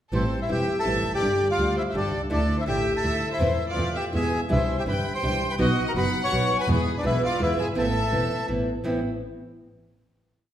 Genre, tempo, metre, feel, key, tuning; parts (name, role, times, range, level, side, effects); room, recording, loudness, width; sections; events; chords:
tango; 166 BPM; 3/4; rubato; A minor; A4 = 442 Hz
bandoneon; melody; 0.1-8.5 s; B3 to C#6; -26 LUFS; equal
rich chamber violin section; second line; 0.1-8.4 s; G#4 to G#5; -32 LUFS; left 2 dB
nylon-string guitar; accompaniment; 0.1-9.0 s; A2 to G4; -27 LUFS; right 1 dB
dark double bass; bass; 0.1-9.0 s; E1 to E2; -28 LUFS; equal
wet recital hall reverb, RT60 1.4 s; recorded in a church or concert hall; -22 LUFS; side -11 dB against mid
0.1-8.9 A section; 8.9-9.9 final chord
0.1 Am7; 1.2 G5; 2.3 Dsus2; 3.4 Am/E; 4.1 E; 4.5 Cadd9; 5.6 B; 6.7 E; 7.8 Amadd9